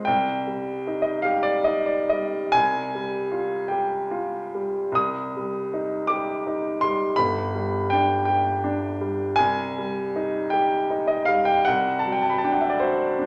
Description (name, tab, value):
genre	classical, romantic nocturne for solo piano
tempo	43-56 BPM (dotted quarters)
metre	12/8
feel	rubato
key	C minor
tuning	A4 = 443 Hz
part	clear baby grand piano	solo	0.0-13.3 s	G1 to Eb6	-24 LUFS	equal	none
room	wet recital hall reverb, RT60 1.4 s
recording	none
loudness	-24 LUFS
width	mono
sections	0.0-13.3 A section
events	none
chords	0.1 Cm; 2.6 Fmadd9/C; 5.0 Cm; 7.2 G; 9.4 Cm; 11.7 D7/C